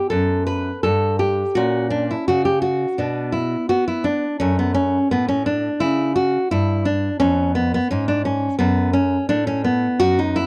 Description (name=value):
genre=classical, baroque-style dance for nylon-string guitar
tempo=85 BPM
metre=4/4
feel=rubato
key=unclear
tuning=A4 = 440 Hz
part: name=nylon-string guitar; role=solo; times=0.0-10.5 s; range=E#2 to B4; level=-20 LUFS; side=equal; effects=none
room=little or no reverb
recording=dry, close 1970s-style studio recording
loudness=-20 LUFS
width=mono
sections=0.0-10.5 A section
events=none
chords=0.0 B5; 1.6 F#(b13)/A#; 3.0 N.C.; 4.4 F#m; 7.2 C#7/E#; 8.6 F#m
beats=0.13 0.84 | 1.57 2.28 2.98 3.69 | 4.39 5.10 5.81 6.51 | 7.21 7.91 8.61 9.31 | 10.01